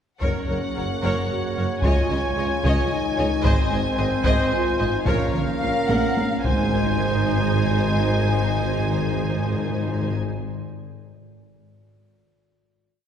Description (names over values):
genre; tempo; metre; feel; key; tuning
cinematic, epic orchestral film score; 111 BPM; 3/4; straight; Ab mixolydian; A4 = 439 Hz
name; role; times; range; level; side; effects
warm symphonic violin section; melody; 0.2-10.1 s; F5 to Ab5; -30 LUFS; left 2 dB; none
rich symphonic violin section; second line; 0.2-10.1 s; C5 to Gb5; -31 LUFS; left 2 dB; none
rich symphonic viola section; accompaniment; 0.2-10.2 s; Eb4 to Db5; -32 LUFS; equal; none
warm French horn section; sustained chords; 0.2-10.2 s; Ab3 to Gb4; -29 LUFS; left 2 dB; none
warm trombone section; sustained chords; 0.2-10.1 s; Db3 to Bb3; -33 LUFS; right 3 dB; none
warm trumpet; stabs; 0.2-10.1 s; Bb4 to Db5; -29 LUFS; right 4 dB; none
mellow tuba; bass; 0.2-10.1 s; Gb1 to Db2; -30 LUFS; equal; none
rich symphonic double bass section; bass; 0.2-10.1 s; Gb1 to Db2; -30 LUFS; right 2 dB; none
warm symphonic cello section; bass; 0.2-10.2 s; Gb2 to Db3; -30 LUFS; right 1 dB; none
taiko ensemble; drums; 0.2-7.5 s; none; -25 LUFS; equal; none
timpani; percussion; 3.4-10.1 s; Ab2; -28 LUFS; left 2 dB; none
room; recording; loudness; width
wet concert hall reverb, RT60 2.2 s; recorded in a church or concert hall; -20 LUFS; side -8 dB against mid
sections
0.2-6.7 theme; 6.7-10.0 final hit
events
drum fill 5.9-6.7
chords
0.2 Gb; 1.8 Dbadd9; 3.5 Ab; 5.1 Bbm; 6.4 Ab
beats
| 0.22 0.76 1.30 | 1.84 2.38 2.92 | 3.45 3.99 4.52 | 5.07 5.62 6.17 | 6.72 7.26 7.80 | 8.35 8.89 9.43